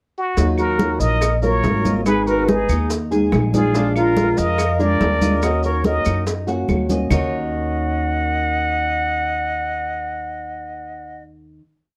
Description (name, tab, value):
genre	latin, Cuban son and guajira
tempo	142 BPM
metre	4/4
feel	straight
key	Eb minor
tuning	A4 = 438 Hz
part	trumpet with plunger mute	melody	0.2-11.2 s	Gb4 to Gb5	-25 LUFS	equal	none
part	nylon-string guitar	accompaniment	0.4-11.6 s	Eb3 to Ab4	-26 LUFS	equal	none
part	Cuban tres	arpeggios	0.4-11.6 s	D4 to F5	-28 LUFS	equal	none
part	upright bass	bass	0.4-11.6 s	Ab1 to Gb2	-25 LUFS	equal	none
part	bongos	percussion	0.4-7.2 s	none	-30 LUFS	equal	none
part	congas	percussion	0.4-7.2 s	none	-26 LUFS	equal	none
part	maracas	percussion	0.4-7.2 s	none	-37 LUFS	equal	none
part	breathy bright jazz flute	second line	0.6-11.2 s	Eb4 to Eb5	-31 LUFS	equal	none
part	claves	percussion	0.6-7.2 s	none	-36 LUFS	equal	none
room	light reverb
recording	none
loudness	-19 LUFS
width	mono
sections	0.0-0.4 pickup bar; 0.4-7.1 A section; 7.1-10.5 final chord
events	drum fill 6.7-7.1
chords	0.4 Ebmadd9; 2.1 Abm; 3.7 Bb7; 5.4 Ebm7